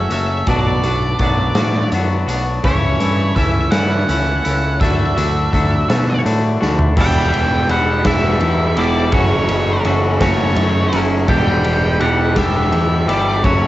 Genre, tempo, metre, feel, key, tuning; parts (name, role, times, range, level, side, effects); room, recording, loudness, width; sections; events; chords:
indie rock; 56 BPM (dotted quarters); 6/8; straight; E dorian; A4 = 440 Hz
octave-fuzz lead guitar; melody; 0.0-13.7 s; C#5 to G5; -21 LUFS; right 1 dB; distortion
clean electric guitar; riff; 0.0-13.7 s; E2 to F#4; -23 LUFS; right 4 dB; lush chorus, cassette tape
overdriven electric guitar; riff; 0.0-13.7 s; E2 to G4; -21 LUFS; left 5 dB; cassette tape
growling picked electric bass; bass; 0.0-13.7 s; E1 to B2; -19 LUFS; equal; overdrive
raw garage drum kit; drums; 0.1-13.6 s; crash cymbal, hi-hat, kick drum, ride cymbal, snare drum, toms; -19 LUFS; equal
studio reverb; home recording on cassette, nothing above 7.9 kHz; -13 LUFS; side -15 dB against mid
0.0-7.0 A section; 7.0-13.7 B section
drum fill 6.6-7.0
0.5 Bm7; 2.6 A/C#; 4.8 Dadd9; 7.0 Em7; 9.1 F#m7; 11.3 Em7